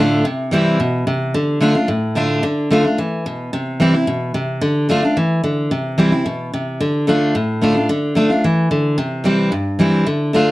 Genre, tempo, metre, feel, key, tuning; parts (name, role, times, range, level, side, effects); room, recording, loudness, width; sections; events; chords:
bluegrass; 220 BPM; 4/4; straight; D dorian; A4 = 440 Hz
picked steel-string acoustic guitar; solo; 0.0-10.5 s; G2 to F4; -15 LUFS; equal
moderate studio reverb, RT60 0.6 s; dark, warm production; -15 LUFS; side -18 dB against mid
0.0-2.4 A section; 2.4-10.5 A section
0.2 C; 1.3 Dm; 3.5 C; 4.6 Dm; 5.7 C; 6.8 Dm; 9.0 C